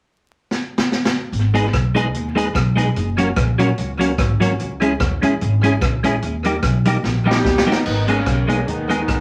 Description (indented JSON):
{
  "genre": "ska",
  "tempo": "147 BPM",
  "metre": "4/4",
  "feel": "swing 55% on 8ths",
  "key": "G# minor",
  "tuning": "A4 = 440 Hz",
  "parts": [
    { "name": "swinging big-band drum kit", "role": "drums", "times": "0.5-9.2 s", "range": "crash cymbal, hi-hat, kick drum, rim click, snare drum", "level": "-24 LUFS", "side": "equal", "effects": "analog delay" },
    { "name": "upright bass", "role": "bass", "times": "1.3-9.2 s", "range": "F#1 to E2", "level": "-23 LUFS", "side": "equal", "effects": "none" },
    { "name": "clean electric guitar", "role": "accompaniment", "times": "1.5-9.0 s", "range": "F#3 to G#4", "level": "-23 LUFS", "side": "equal", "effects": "analog delay" },
    { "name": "percussive tonewheel organ", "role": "stabs", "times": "1.5-9.0 s", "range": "A#3 to B4", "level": "-28 LUFS", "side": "equal", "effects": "chorus vibrato, fast rotary speaker" },
    { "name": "warm horn section", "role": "melody", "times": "7.3-9.2 s", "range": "C#3 to G4", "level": "-24 LUFS", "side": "equal", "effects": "none" }
  ],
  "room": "wet club reverb, RT60 0.7 s",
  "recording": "vinyl crackle",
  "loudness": "-18 LUFS",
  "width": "mono",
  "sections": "0.0-1.3 A section; 1.3-7.9 B section; 7.9-9.2 C section",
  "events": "drum fill 0.5-1.3, 7.0-7.9",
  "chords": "0.0 N.C.; 1.3 G#m; 3.0 F#; 4.6 C#m; 6.2 D#; 7.9 G#m"
}